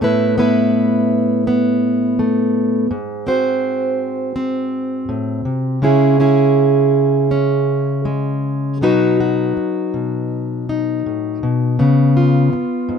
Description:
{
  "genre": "folk, solo fingerstyle acoustic guitar",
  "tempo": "82 BPM",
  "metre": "4/4",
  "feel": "rubato",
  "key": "C# minor",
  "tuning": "A4 = 440 Hz",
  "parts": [
    { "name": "fingerpicked plugged-in steel-string acoustic guitar", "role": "solo", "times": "0.0-13.0 s", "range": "G#2 to B#4", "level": "-14 LUFS", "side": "equal", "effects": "none" }
  ],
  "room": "light reverb",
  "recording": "minimal, uncompressed stereo recording",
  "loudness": "-14 LUFS",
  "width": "side -6 dB against mid",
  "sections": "0.0-8.8 A section; 8.8-13.0 B section",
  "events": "none",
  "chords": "0.0 Asus2; 2.9 G#7; 5.8 C#m; 8.8 B; 11.8 C#7",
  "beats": "| 0.02 0.74 1.46 2.19 | 2.90 3.62 4.35 5.09 | 5.83 6.57 7.31 8.06 | 8.82 9.57 10.32 11.06 | 11.79 12.52"
}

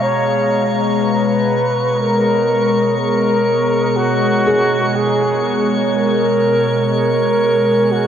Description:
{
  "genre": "ambient",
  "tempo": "61 BPM",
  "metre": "4/4",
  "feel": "straight",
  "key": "unclear",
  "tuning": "A4 = 441 Hz",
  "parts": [
    { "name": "breathy flugelhorn", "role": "melody", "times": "0.0-8.1 s", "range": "F#4 to C#5", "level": "-16 LUFS", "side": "equal", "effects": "shimmer reverb, diffuse ambient delay" },
    { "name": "evolving wavetable pad", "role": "sustained chords", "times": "0.0-8.1 s", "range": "B2 to A#5", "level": "-17 LUFS", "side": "left 1 dB", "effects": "chorus, built-in reverb" },
    { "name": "felt-muted upright piano", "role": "arpeggios", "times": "0.0-8.1 s", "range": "F#4 to G#4", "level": "-25 LUFS", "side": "right 1 dB", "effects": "none" },
    { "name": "drifting glass-harmonics texture", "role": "texture", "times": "0.0-8.1 s", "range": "C#5 to C#6", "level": "-23 LUFS", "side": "right 1 dB", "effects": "chorus, built-in reverb, shimmer reverb" }
  ],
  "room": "wet huge ambient reverb, RT60 7.5 s",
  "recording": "dark, warm production",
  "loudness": "-13 LUFS",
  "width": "side -8 dB against mid",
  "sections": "0.0-8.1 A section",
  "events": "none",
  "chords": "0.0 G#madd9/B",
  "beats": "| 0.04 1.02 2.00 2.99 | 3.97 4.96 5.94 6.92 | 7.91"
}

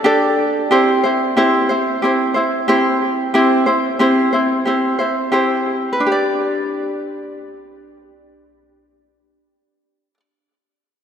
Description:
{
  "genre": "pop",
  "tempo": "91 BPM",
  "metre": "4/4",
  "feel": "straight",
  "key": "unclear",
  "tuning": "A4 = 440 Hz",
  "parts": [
    { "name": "ukulele", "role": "solo", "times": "0.0-10.2 s", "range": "C4 to D5", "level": "-14 LUFS", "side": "equal", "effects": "analog delay" }
  ],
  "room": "wet lush hall reverb, RT60 3.0 s",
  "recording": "dreamy mix soaked in reverb",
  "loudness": "-14 LUFS",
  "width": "side -8 dB against mid",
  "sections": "0.7-6.0 A section; 6.0-8.6 B section",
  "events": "none",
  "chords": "0.0 Dsus4; 0.7 C; 6.0 G5",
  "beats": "0.06 | 0.72 1.37 2.03 2.69 | 3.35 4.01 4.67 5.33 | 5.99 6.65 7.31 7.97"
}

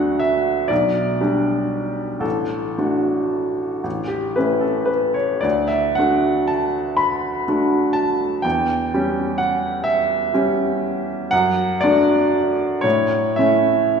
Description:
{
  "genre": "classical, romantic nocturne for solo piano",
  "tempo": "36-43 BPM (dotted quarters)",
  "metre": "6/8",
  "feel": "rubato",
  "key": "D major",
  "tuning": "A4 = 439 Hz",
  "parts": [
    { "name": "clear baby grand piano", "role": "solo", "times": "0.0-14.0 s", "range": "A1 to B5", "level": "-17 LUFS", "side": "equal", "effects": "none" }
  ],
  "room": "wet concert hall reverb, RT60 2.2 s",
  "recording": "recorded in a church or concert hall, small room ambience",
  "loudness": "-17 LUFS",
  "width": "side -6 dB against mid",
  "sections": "0.0-14.0 A section",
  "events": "none",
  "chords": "0.0 D; 0.7 G/B; 2.2 D/A; 3.9 A; 5.4 D; 8.4 C#dim/E; 11.3 D/F#; 12.8 A",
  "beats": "0.71 | 2.25 3.85 | 5.44 6.98 | 8.45 9.86 | 11.32 12.84"
}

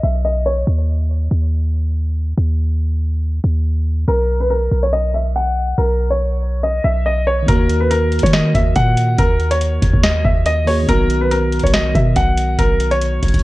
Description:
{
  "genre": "hip hop, trap",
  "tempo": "141 BPM",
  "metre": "4/4",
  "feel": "half-time",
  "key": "unclear",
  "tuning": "A4 = 440 Hz",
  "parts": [
    { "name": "warm concert grand piano", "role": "melody", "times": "0.0-0.6, 4.1-13.4 s", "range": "Bb4 to F#5", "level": "-19 LUFS", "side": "equal", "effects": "low-pass filter, ping-pong delay" },
    { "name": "warm 808-style bass", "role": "bass", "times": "0.0-13.4 s", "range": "B1 to Eb3", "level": "-17 LUFS", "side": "equal", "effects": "none" },
    { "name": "tine electric piano", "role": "accompaniment", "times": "7.4-13.4 s", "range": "Eb3 to Bb4", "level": "-22 LUFS", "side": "equal", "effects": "fast stereo tremolo, low-pass filter" },
    { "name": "booming analog drum machine", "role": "drums", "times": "7.5-13.4 s", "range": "hi-hat, kick drum, snare drum", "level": "-18 LUFS", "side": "equal", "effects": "none" }
  ],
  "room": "digital ambience",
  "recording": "worn, warbling old tape, cassette tape, warbly pitch drift",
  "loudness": "-14 LUFS",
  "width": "side -18 dB against mid",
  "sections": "0.0-13.4 A section",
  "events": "filter sweep 0.0-7.5",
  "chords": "0.0 B5; 0.7 N.C.; 4.1 B5; 7.5 Ebm; 10.9 Bmaj7",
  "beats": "0.25 | 0.67 1.10 1.52 1.95 | 2.38 2.80 3.23 3.65 | 4.08 4.50 4.93 5.35 | 5.78 6.21 6.63 7.06 | 7.48 7.91 8.33 8.76 | 9.18 9.61 10.04 10.46 | 10.89 11.31 11.74 12.16 | 12.59 13.01"
}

